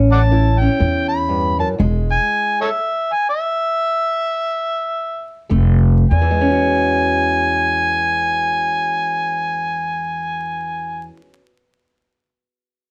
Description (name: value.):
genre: acoustic country blues, solo or duo.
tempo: 95-122 BPM.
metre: 4/4.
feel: swing 61% on 8ths.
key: E major.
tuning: A4 = 440 Hz.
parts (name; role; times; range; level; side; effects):
fingerpicked steel-string acoustic guitar; accompaniment; 0.0-11.5 s; E2 to F#4; -24 LUFS; equal; none.
upright bass; bass; 0.0-2.2, 5.5-11.1 s; E1 to E2; -20 LUFS; equal; none.
overdriven harmonica; melody; 0.1-11.0 s; A4 to B5; -21 LUFS; equal; none.
room: light reverb.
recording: vinyl crackle.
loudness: -18 LUFS.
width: mono.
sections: 0.0-6.1 A section; 6.1-11.2 B section.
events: slowing down 1.8-6.1; stop 1.8-5.5.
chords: 0.0 A7; 1.8 E; 5.5 F; 6.1 E69.